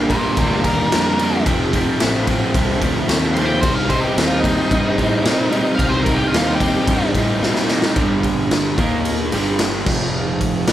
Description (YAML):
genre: garage rock duo or trio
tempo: 110 BPM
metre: 4/4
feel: straight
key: unclear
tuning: A4 = 441 Hz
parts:
  - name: crunchy overdriven guitar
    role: riff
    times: 0.0-10.7 s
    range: F2 to Eb4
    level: -19 LUFS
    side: equal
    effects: none
  - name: fuzz picked electric bass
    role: bass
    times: 0.0-10.7 s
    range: F1 to Bb2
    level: -23 LUFS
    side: equal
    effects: overdrive, tube saturation
  - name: octave-fuzz lead guitar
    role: melody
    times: 0.1-7.1 s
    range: Eb4 to C6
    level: -22 LUFS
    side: left 1 dB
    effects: distortion
  - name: raw garage drum kit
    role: drums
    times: 0.1-10.7 s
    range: crash cymbal, kick drum, ride cymbal, snare drum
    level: -20 LUFS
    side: equal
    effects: none
room: light reverb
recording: band playing live in one room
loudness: -15 LUFS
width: side -12 dB against mid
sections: 0.0-8.0 A section; 8.0-10.7 B section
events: drum fill 7.4-8.0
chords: 0.0 Gm; 1.4 F; 3.6 Cm; 8.0 G5; 8.8 Eb5; 9.3 G5; 9.9 F5